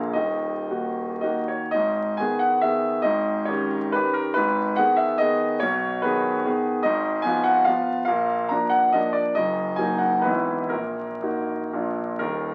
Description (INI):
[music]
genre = classical, romantic triple-time dance for piano with dotted rhythms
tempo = 105-153 BPM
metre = 3/4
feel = rubato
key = G# minor, Eb minor from 6.9 s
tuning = A4 = 442 Hz
[part]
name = bright concert grand piano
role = solo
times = 0.0-12.5 s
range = Eb1 to Bb5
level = -23 LUFS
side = equal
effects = none
[sound]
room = wet large studio reverb, RT60 1.0 s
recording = very old 78 rpm record, vinyl crackle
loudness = -23 LUFS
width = mono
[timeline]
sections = 0.0-1.7 A section; 1.7-12.2 B section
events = none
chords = 0.1 Ebm; 1.7 G#m; 3.1 D#7/G#; 4.4 G#m; 5.6 G#m/B; 6.9 Fm7b5/Ab; 8.1 Bb; 9.4 Ebm/Gb; 10.2 E/G#; 10.7 Ebm/Bb; 11.7 Bb